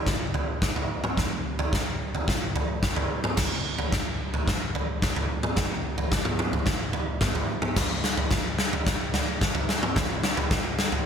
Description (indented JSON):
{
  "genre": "rock",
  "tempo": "109 BPM",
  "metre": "4/4",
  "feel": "straight",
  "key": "none",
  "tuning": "none",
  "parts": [
    { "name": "big rock drum kit", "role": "drums", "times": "0.1-11.1 s", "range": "crash cymbal, kick drum, snare drum, toms", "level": "-24 LUFS", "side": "equal", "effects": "none" }
  ],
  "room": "light reverb",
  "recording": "none",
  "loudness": "-24 LUFS",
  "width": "side -7 dB against mid",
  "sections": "0.0-11.1 A section",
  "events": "build-up 0.0-11.1; drum fill 0.0-11.1",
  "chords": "none"
}